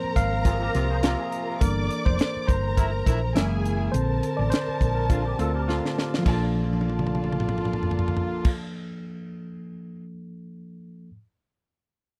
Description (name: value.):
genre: lush 1970s-style soul.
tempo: 103 BPM.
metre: 4/4.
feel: swing 54% on 16ths.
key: Bb major.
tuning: A4 = 439 Hz.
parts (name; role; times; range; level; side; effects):
warm symphonic violin section; second line; 0.0-8.5 s; F4 to D6; -35 LUFS; equal; none.
tine electric piano; accompaniment; 0.0-11.1 s; D3 to F5; -32 LUFS; equal; none.
hollow-body short-scale fingered electric bass; bass; 0.0-8.5 s; F1 to D2; -30 LUFS; equal; none.
tight funk drum kit; drums; 0.2-10.0 s; crash cymbal, hi-hat, kick drum, snare drum, toms; -27 LUFS; equal; none.
clean electric guitar; riff; 0.5-1.6, 5.1-6.2 s; D4 to C5; -37 LUFS; equal; ensemble chorus.
warm horn section; stabs; 0.5-8.5 s; Bb2 to F4; -34 LUFS; equal; none.
room: little or no reverb.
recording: dry, close 1970s-style studio recording.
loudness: -25 LUFS.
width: mono.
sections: 0.0-6.3 A section; 6.3-8.6 B section.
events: tine electric piano solo 0.0-6.3; drum fill 5.7-6.3, 6.5-8.4.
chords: 0.0 Ab69; 1.6 C13; 3.4 Gb9; 3.9 Bbmaj7.